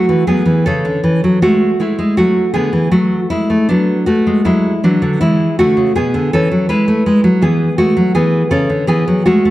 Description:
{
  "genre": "classical, baroque-style dance for nylon-string guitar",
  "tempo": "80 BPM",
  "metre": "4/4",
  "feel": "rubato",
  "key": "unclear",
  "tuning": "A4 = 438 Hz",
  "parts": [
    { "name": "nylon-string guitar", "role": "solo", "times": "0.0-9.5 s", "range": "B2 to B4", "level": "-11 LUFS", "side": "equal", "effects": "none" }
  ],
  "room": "moderate scoring stage reverb, RT60 1.4 s",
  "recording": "dark, warm production",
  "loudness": "-11 LUFS",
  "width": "side -15 dB against mid",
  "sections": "0.0-9.5 A section",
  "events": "none",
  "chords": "0.0 A/E; 2.2 D; 5.2 E"
}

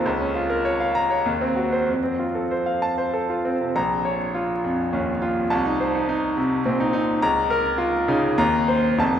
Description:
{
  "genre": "classical, virtuoso piano study",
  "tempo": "94-107 BPM",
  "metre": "3/4",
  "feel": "rubato",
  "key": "Bb minor",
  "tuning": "A4 = 440 Hz",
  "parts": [
    { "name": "bright concert grand piano", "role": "solo", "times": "0.0-9.2 s", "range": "F1 to Bb5", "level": "-20 LUFS", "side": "equal", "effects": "none" }
  ],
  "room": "wet church reverb, RT60 3.7 s",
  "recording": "recorded in a church or concert hall, vinyl crackle",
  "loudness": "-20 LUFS",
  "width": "side -9 dB against mid",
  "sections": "0.0-3.8 A section; 3.8-9.2 B section",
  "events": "none",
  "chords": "0.1 Bbm/Db; 1.3 Cdim/Eb; 1.9 F; 3.8 Bbm; 5.5 Adim/C; 7.2 Bbm/Db; 8.4 Cm7/Eb"
}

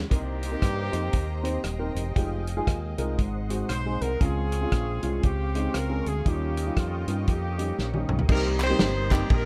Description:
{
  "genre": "uptempo gospel",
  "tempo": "117 BPM",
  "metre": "4/4",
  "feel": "swing 61% on 8ths",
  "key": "unclear",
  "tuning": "A4 = 440 Hz",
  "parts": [
    { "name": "dark baby grand piano", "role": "accompaniment", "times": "0.0-9.3 s", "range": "Ab2 to C5", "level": "-34 LUFS", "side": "equal", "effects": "none" },
    { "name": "percussive tonewheel organ", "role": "sustained chords", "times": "0.0-9.5 s", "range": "Ab3 to Eb6", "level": "-42 LUFS", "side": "equal", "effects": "slow rotary speaker, chorus vibrato" },
    { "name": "fingered electric bass with an envelope filter", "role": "bass", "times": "0.0-9.5 s", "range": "Eb1 to G2", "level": "-32 LUFS", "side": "equal", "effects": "none" },
    { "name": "warm horn section", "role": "melody", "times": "0.1-9.5 s", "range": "Bb3 to C5", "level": "-34 LUFS", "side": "equal", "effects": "none" },
    { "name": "warm studio string section", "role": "sustained chords", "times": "0.1-8.3 s", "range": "Ab4 to Bb5", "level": "-45 LUFS", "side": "equal", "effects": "none" },
    { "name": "warm soul drum kit", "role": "drums", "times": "0.1-9.4 s", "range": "crash cymbal, hi-hat, kick drum, ride cymbal, rim click, snare drum, toms", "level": "-28 LUFS", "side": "equal", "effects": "none" },
    { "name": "group handclap", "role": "percussion", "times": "8.6-9.2 s", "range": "none", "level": "-39 LUFS", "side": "equal", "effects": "none" }
  ],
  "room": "little or no reverb",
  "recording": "dark, warm production",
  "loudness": "-27 LUFS",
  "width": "mono",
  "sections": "0.1-8.3 A section; 8.3-9.5 B section",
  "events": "drum fill 7.8-8.3",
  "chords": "0.1 Cm7; 2.2 Fm9; 3.2 Ab7; 4.2 Dbmaj7; 6.3 Eb9; 8.3 Cm7"
}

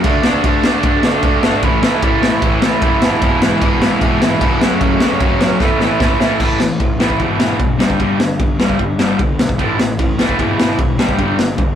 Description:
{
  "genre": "punk rock",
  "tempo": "151 BPM",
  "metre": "4/4",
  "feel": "straight",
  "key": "A major",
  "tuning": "A4 = 438 Hz",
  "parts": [
    { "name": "fuzz guitar", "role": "riff", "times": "0.0-6.4 s", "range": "G#2 to F#4", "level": "-20 LUFS", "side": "equal", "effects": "distortion" },
    { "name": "raw garage guitar", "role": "riff", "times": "0.0-11.8 s", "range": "E2 to D4", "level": "-19 LUFS", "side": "right 6 dB", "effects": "overdrive" },
    { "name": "sludgy distorted guitar", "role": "riff", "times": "0.0-11.8 s", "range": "E2 to D4", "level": "-19 LUFS", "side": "left 6 dB", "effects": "overdrive" },
    { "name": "fuzz picked electric bass", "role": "bass", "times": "0.0-11.8 s", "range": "F#1 to D3", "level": "-25 LUFS", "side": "equal", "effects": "none" },
    { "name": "raw garage drum kit", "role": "drums", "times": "0.0-11.7 s", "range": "crash cymbal, kick drum, ride cymbal, snare drum", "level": "-16 LUFS", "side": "equal", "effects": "none" }
  ],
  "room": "moderate studio reverb, RT60 0.5 s",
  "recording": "rough rehearsal-room recording, warm saturation",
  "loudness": "-12 LUFS",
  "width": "side -9 dB against mid",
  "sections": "0.0-6.4 A section; 6.4-11.8 B section",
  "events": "drum fill 5.6-6.4",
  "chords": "0.0 D; 1.6 A; 3.0 E/G#; 4.6 F#m; 5.6 A; 6.4 A5; 7.2 E/G#; 7.8 G5; 9.6 A5; 10.4 E/G#; 11.0 G5"
}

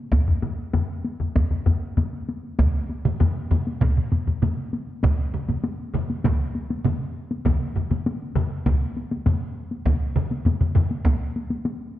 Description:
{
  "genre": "japanese traditional, taiko drum ensemble",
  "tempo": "99 BPM",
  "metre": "4/4",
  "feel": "straight",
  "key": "none",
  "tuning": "none",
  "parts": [
    { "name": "solo taiko drums", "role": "percussion", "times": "0.1-11.8 s", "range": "none", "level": "-29 LUFS", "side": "left 2 dB", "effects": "none" },
    { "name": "taiko ensemble", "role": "percussion", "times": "0.1-10.9 s", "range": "none", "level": "-24 LUFS", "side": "left 2 dB", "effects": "none" },
    { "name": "taiko ensemble", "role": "percussion", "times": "0.1-11.2 s", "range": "none", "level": "-23 LUFS", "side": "right 1 dB", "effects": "none" },
    { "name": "taiko ensemble", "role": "percussion", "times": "2.6-10.9 s", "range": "none", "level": "-27 LUFS", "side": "right 4 dB", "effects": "none" }
  ],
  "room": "moderate scoring stage reverb, RT60 1.6 s",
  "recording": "dark, warm production",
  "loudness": "-22 LUFS",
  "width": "side -13 dB against mid",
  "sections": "0.0-5.0 A section; 5.0-12.0 B section",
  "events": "speeding up 0.0-12.0",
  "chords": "none"
}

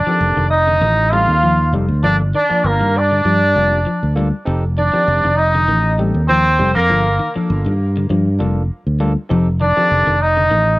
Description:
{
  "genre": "afrobeat",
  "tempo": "99 BPM",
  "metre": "4/4",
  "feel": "swing 53% on 16ths",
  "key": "F mixolydian",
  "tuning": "A4 = 440 Hz",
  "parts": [
    { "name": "trombone with straight mute", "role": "melody", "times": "0.0-10.8 s", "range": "Bb3 to F4", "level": "-16 LUFS", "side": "equal", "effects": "cassette tape" },
    { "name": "clear alto saxophone", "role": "second line", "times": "0.0-10.8 s", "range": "Bb4 to F5", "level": "-20 LUFS", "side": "right 2 dB", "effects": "none" },
    { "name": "fingered electric bass", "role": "bass", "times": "0.0-10.8 s", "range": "F1 to G2", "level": "-17 LUFS", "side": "equal", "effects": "none" },
    { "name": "barky tine electric piano", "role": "accompaniment", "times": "0.1-10.1 s", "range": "Eb3 to C5", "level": "-26 LUFS", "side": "right 1 dB", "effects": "overdrive" },
    { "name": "clean electric guitar", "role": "arpeggios", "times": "0.1-10.7 s", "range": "D3 to G3", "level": "-22 LUFS", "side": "left 3 dB", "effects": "none" }
  ],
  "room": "studio ambience",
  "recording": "home recording on cassette",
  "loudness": "-13 LUFS",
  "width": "side -20 dB against mid",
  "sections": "0.0-10.8 A section",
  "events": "none",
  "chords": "0.0 F7; 2.0 Gm7; 4.5 F7; 6.9 Gm7; 9.3 F7"
}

